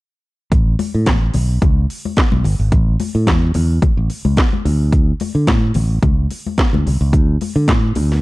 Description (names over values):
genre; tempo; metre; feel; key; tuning
disco; 109 BPM; 4/4; straight; A major; A4 = 441 Hz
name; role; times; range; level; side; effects
fingered electric bass; bass; 0.5-8.2 s; G1 to D3; -15 LUFS; equal; none
house drum kit; drums; 0.5-8.2 s; handclaps, hi-hat, kick drum, snare drum; -16 LUFS; equal; none
congas; percussion; 0.5-8.1 s; none; -24 LUFS; left 5 dB; none
room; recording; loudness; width
little or no reverb; dark, warm production; -13 LUFS; side -20 dB against mid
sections
0.5-8.2 A section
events
none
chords
none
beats
| 0.52 1.07 1.62 2.17 | 2.72 3.27 3.82 4.37 | 4.92 5.48 6.03 6.58 | 7.13 7.68